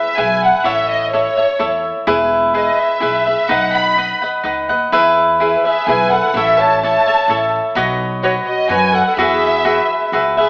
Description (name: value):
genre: mexican folk, mariachi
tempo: 127 BPM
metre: 3/4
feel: straight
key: E major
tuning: A4 = 443 Hz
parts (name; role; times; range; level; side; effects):
- dark studio violin section; melody; 0.0-10.5 s; B4 to B5; -17 LUFS; equal; none
- cavaquinho; accompaniment; 0.0-10.5 s; D#4 to F#5; -14 LUFS; equal; none
- upright bass; bass; 0.2-10.4 s; E1 to F#2; -27 LUFS; equal; none
- dark trumpet; second line; 5.4-10.5 s; E4 to C#5; -21 LUFS; equal; none
room: wet recital hall reverb, RT60 1.6 s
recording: AM radio sound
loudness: -12 LUFS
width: side -27 dB against mid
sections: 0.0-10.5 A section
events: none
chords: 0.0 E; 0.7 A; 2.1 E; 3.5 B; 4.9 E; 6.3 A; 7.8 Badd9; 9.2 Eadd9